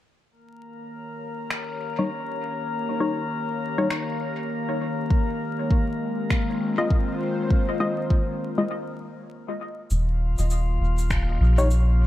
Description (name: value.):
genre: ambient dub.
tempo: 100 BPM.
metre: 4/4.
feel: swing 60% on 16ths.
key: unclear.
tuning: A4 = 440 Hz.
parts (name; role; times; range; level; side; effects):
airy breathy pad; sustained chords; 0.9-12.1 s; Eb3 to Db5; -31 LUFS; left 2 dB; chorus.
drifting glass-harmonics texture; texture; 0.3-12.1 s; Bb3 to F5; -31 LUFS; left 2 dB; chorus, built-in reverb.
electronic finger snaps and shaker; drums; 1.5-11.8 s; none; -33 LUFS; equal; dub echo.
filtered dub chord stab; stabs; 2.0-11.7 s; G3 to Eb5; -28 LUFS; left 2 dB; chorus, dub echo.
electronic kick drum; drums; 5.1-11.2 s; none; -21 LUFS; equal; none.
soft dub sub bass; bass; 9.9-12.1 s; Eb1 to Bb1; -20 LUFS; equal; none.
room: light reverb, digital ambience.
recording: vinyl crackle.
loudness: -22 LUFS.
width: side -14 dB against mid.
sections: 0.3-9.9 A section; 9.9-12.1 B section.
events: fade-in on analog synth pad 0.3-9.9; filter sweep on synth stab 0.3-9.9; break 8.7-9.9.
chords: 0.3 Eb7; 5.1 Fm7; 9.9 Eb7.